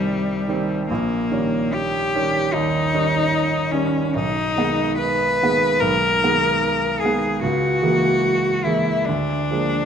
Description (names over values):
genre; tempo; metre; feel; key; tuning
classical, romantic duo for cello and grand piano; 67-77 BPM; 4/4; rubato; G# minor; A4 = 441 Hz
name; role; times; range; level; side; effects
clear cello; melody; 0.0-9.9 s; G3 to B4; -20 LUFS; left 2 dB; none
clear grand piano; accompaniment; 0.0-9.9 s; A#1 to C#4; -22 LUFS; right 3 dB; none
room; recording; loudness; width
wet scoring stage reverb, RT60 1.7 s; none; -18 LUFS; side -7 dB against mid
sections
0.0-9.9 A section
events
none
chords
0.0 Cm; 0.9 D#7/A#; 4.1 G#m/B; 7.4 A#m7b5/C#; 9.1 A#7/D